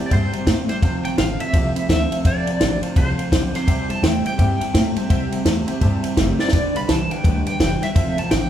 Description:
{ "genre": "rockabilly", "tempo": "168 BPM", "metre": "4/4", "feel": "swing 62% on 8ths", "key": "C major", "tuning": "A4 = 440 Hz", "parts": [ { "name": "honky-tonk upright piano", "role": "accompaniment", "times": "0.0-8.5 s", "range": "B4 to B5", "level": "-34 LUFS", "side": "left 3 dB", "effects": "none" }, { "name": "picked steel-string acoustic guitar", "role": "accompaniment", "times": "0.0-8.5 s", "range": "G2 to A4", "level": "-30 LUFS", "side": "right 3 dB", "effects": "none" }, { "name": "electric guitar through a small old amp", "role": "riff", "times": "0.0-8.5 s", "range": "F2 to A3", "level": "-25 LUFS", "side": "right 1 dB", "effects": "phaser" }, { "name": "electric guitar through a small old amp", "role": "melody", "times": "0.1-8.5 s", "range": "C5 to B5", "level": "-26 LUFS", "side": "equal", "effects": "tremolo" }, { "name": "upright bass", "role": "bass", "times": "0.1-8.5 s", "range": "E1 to A2", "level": "-24 LUFS", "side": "equal", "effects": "none" }, { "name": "compact cocktail drum kit", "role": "drums", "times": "0.1-8.4 s", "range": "kick drum, ride cymbal, snare drum", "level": "-20 LUFS", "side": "equal", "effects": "none" } ], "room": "moderate large studio reverb, RT60 1.3 s", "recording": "band playing live in one room", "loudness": "-17 LUFS", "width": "side -10 dB against mid", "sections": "0.0-8.5 A section", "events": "drum fill 6.3", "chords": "0.0 C; 0.8 F; 3.7 C; 6.5 G; 8.0 F", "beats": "0.11 0.47 | 0.82 1.18 1.54 1.89 | 2.25 2.60 2.96 3.32 | 3.67 4.03 4.39 4.74 | 5.10 5.46 5.81 6.17 | 6.53 6.88 7.24 7.60 | 7.96 8.31" }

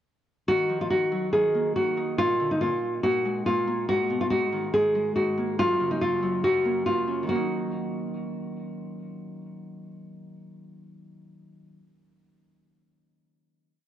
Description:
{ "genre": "hip hop", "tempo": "141 BPM", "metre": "4/4", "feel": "half-time", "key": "Eb minor", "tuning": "A4 = 443 Hz", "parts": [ { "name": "nylon-string guitar", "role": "melody", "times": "0.5-8.5 s", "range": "Eb4 to Ab4", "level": "-24 LUFS", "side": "equal", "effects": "low-pass filter" }, { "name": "Celtic harp", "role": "accompaniment", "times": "0.5-11.9 s", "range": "Gb2 to Eb4", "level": "-31 LUFS", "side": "equal", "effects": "low-pass filter" } ], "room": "light reverb, small room reverb", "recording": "dry, gritty hardware recording, cassette tape", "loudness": "-23 LUFS", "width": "side -11 dB against mid", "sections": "0.5-7.3 breakdown; 7.3-10.7 final chord", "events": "none", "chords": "0.5 Ebmadd9; 2.2 Bb7; 3.9 Abmadd9; 5.6 Gb; 7.3 Ebm", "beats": "| 0.48 0.91 1.33 1.76 | 2.18 2.61 3.03 3.46 | 3.88 4.31 4.74 5.16 | 5.59 6.01 6.44 6.86 | 7.29 7.71 8.14 8.57 | 8.99 9.42 9.84 10.27" }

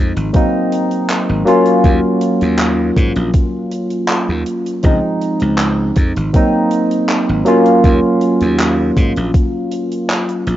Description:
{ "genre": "vaporwave", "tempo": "80 BPM", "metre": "4/4", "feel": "straight", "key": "Eb dorian", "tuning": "A4 = 440 Hz", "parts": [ { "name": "barky tine electric piano", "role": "accompaniment", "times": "0.0-10.6 s", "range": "F3 to F4", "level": "-14 LUFS", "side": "equal", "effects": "lush chorus, tape echo" }, { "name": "glassy slap bass", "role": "bass", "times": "0.0-10.6 s", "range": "Ab1 to Ab2", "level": "-18 LUFS", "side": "equal", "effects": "tube saturation" }, { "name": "gated 80s drum kit", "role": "drums", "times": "0.2-10.6 s", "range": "handclaps, hi-hat", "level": "-21 LUFS", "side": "equal", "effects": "none" }, { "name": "electronic kick drum", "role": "drums", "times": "0.3-9.5 s", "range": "none", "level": "-13 LUFS", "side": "equal", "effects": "overdrive" } ], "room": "small room ambience", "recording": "rough home demo mix, cassette tape, nothing above 7.6 kHz", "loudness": "-12 LUFS", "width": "side -13 dB against mid", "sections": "0.0-10.6 A section", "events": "none", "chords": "0.3 Ab9 (rootless); 1.5 Ebm7; 4.8 Dbmaj7; 6.3 Ab9 (rootless); 7.5 Ebm7", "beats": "0.34 1.09 | 1.84 2.59 3.34 4.09 | 4.84 5.59 6.34 7.09 | 7.84 8.59 9.34 10.09" }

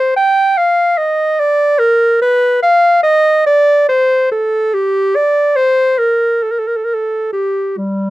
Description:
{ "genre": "classical, baroque-style fantasia for unaccompanied clarinet", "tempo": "66-75 BPM", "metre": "3/4", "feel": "rubato", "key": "G minor", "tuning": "A4 = 439 Hz", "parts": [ { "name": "warm clarinet", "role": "solo", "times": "0.0-8.1 s", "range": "G3 to G5", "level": "-11 LUFS", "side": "equal", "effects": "none" } ], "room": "light reverb", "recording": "close, detailed microphones", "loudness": "-11 LUFS", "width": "side -16 dB against mid", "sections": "0.0-8.1 A section", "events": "none", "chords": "none", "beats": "0.57 1.39 | 2.21 3.04 3.90 | 4.75 5.58 6.44 | 7.34" }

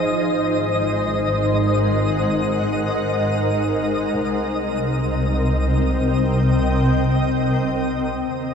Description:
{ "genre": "ambient", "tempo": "free time", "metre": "none", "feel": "none", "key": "unclear", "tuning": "A4 = 438 Hz", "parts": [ { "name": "shimmering ambient pad", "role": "sustained chords", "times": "0.0-8.5 s", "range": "C3 to G5", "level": "-20 LUFS", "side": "left 1 dB", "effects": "chorus, built-in reverb" }, { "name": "dark chamber double bass section", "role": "bass", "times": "0.0-8.5 s", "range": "Ab1 to Eb2", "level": "-23 LUFS", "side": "equal", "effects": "none" }, { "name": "twinkling granular texture", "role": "texture", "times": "0.0-8.3 s", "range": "Eb5 to Eb6", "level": "-26 LUFS", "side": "right 2 dB", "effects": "built-in reverb" } ], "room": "wet huge ambient reverb, RT60 8.2 s", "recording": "in a vast, echoing space, cassette tape", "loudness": "-18 LUFS", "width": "side -6 dB against mid", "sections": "0.0-8.3 A section", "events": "none", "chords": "0.0 Ab7; 4.2 Cm7", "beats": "free time" }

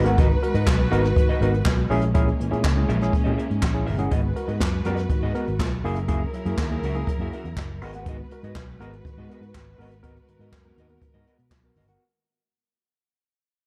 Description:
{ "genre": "disco", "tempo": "122 BPM", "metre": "4/4", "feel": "straight", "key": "G# minor", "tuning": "A4 = 439 Hz", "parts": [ { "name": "barky tine electric piano", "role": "accompaniment", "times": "0.0-12.0 s", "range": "G#2 to A#4", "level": "-31 LUFS", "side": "equal", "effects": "none" }, { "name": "semi-hollow electric guitar", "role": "accompaniment", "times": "0.0-12.0 s", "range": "B3 to F#5", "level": "-35 LUFS", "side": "equal", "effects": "none" }, { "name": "dark studio string section", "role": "sustained chords", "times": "0.0-12.0 s", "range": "F#3 to B4", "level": "-33 LUFS", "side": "equal", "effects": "none" }, { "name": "fingered electric bass", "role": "bass", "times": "0.0-12.0 s", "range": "F#1 to B2", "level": "-28 LUFS", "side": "equal", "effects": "none" }, { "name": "jazz brush drum kit", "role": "drums", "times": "0.1-12.0 s", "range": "hi-hat, kick drum, snare drum", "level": "-27 LUFS", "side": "equal", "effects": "none" }, { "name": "group handclap", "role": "percussion", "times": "0.7-11.6 s", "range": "none", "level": "-37 LUFS", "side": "equal", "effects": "none" } ], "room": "light reverb, small room ambience", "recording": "dark, warm production", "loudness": "-23 LUFS", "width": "mono", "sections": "0.0-12.0 A section", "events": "fade-out 0.0-12.0", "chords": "0.0 G#m7; 1.9 A#m7b5; 4.1 G#m7; 5.8 F#7; 7.8 G#m7; 9.8 G#m9", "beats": "| 0.18 0.67 1.17 1.66 | 2.15 2.64 3.14 3.63 | 4.12 4.62 5.11 5.60 | 6.09 6.59 7.08 7.57 | 8.06 8.56 9.05 9.54 | 10.04 10.53 11.02 11.51" }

